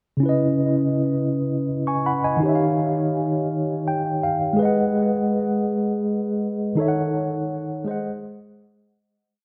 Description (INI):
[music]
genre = R&B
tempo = 55 BPM (dotted quarters)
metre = 6/8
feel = straight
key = C# minor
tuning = A4 = 440 Hz
[part]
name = mellow tine electric piano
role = solo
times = 0.2-9.0 s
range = C#3 to C#6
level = -22 LUFS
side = equal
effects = tape echo
[sound]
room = wet lush hall reverb, RT60 2.2 s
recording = dreamy mix soaked in reverb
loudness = -22 LUFS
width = mono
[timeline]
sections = 0.2-9.0 verse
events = tine electric piano fill 3.5-4.6; fade-out 6.8-9.0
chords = 0.2 C#m7; 2.4 D#7; 4.6 G#m7; 6.8 D#m7b5; 7.9 G#7